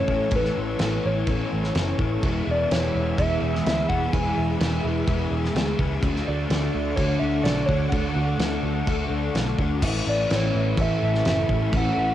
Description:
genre	rock, shoegaze and dream pop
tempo	126 BPM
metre	4/4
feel	straight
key	unclear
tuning	A4 = 436 Hz
part	soft struck synth lead	melody	0.0-12.1 s	B4 to G#5	-28 LUFS	equal	chorus, analog delay
part	soft string machine	sustained chords	0.0-12.1 s	G#4 to E6	-34 LUFS	equal	phaser, ensemble chorus
part	electric guitar through a small old amp	arpeggios	0.0-12.1 s	E3 to A4	-36 LUFS	left 1 dB	wide subtle chorus, analog delay
part	crunchy overdriven guitar	riff	0.0-12.1 s	A2 to F#4	-29 LUFS	left 7 dB	analog chorus
part	overdriven semi-hollow guitar	riff	0.0-12.1 s	A2 to F#4	-30 LUFS	right 6 dB	reverse reverb
part	vintage muted picked electric bass	bass	0.0-12.1 s	E1 to D2	-27 LUFS	equal	transformer saturation
part	loose indie drum kit	drums	0.1-11.8 s	crash cymbal, kick drum, snare drum	-28 LUFS	equal	none
room	light reverb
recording	home recording on cassette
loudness	-21 LUFS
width	side -12 dB against mid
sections	0.0-9.8 A section; 9.8-12.1 A section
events	none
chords	0.0 Aadd9; 2.2 E; 6.0 Dmaj7; 9.8 Aadd9

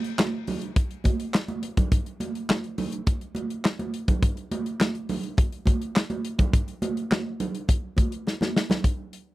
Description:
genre	funk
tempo	104 BPM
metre	4/4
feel	straight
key	none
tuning	none
part	modern studio drum kit	drums	0.0-9.3 s	handclaps, hi-hat, kick drum, snare drum	-23 LUFS	equal	none
part	congas	percussion	0.2-8.8 s	none	-30 LUFS	right 3 dB	none
room	little or no reverb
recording	dry, close 1970s-style studio recording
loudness	-24 LUFS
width	side -17 dB against mid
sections	0.0-8.8 A section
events	drum fill 8.3-8.8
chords	none

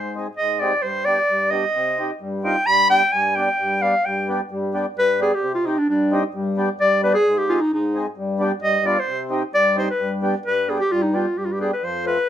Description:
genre	klezmer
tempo	131 BPM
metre	2/4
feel	straight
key	G phrygian dominant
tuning	A4 = 439 Hz
part	clear clarinet	melody	0.0-12.3 s	D4 to B5	-18 LUFS	equal	none
part	mellow accordion	accompaniment	0.0-12.2 s	F2 to Ab4	-24 LUFS	equal	none
room	moderate studio reverb, RT60 0.6 s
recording	minimal, uncompressed stereo recording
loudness	-18 LUFS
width	side -10 dB against mid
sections	0.0-4.5 A section; 4.5-11.8 B section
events	clarinet solo 0.0-4.5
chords	0.0 Ab; 0.8 G; 1.8 Cm; 2.7 G; 5.4 Cm; 6.3 G; 7.3 Ab; 8.2 G; 9.1 Cm; 10.0 G

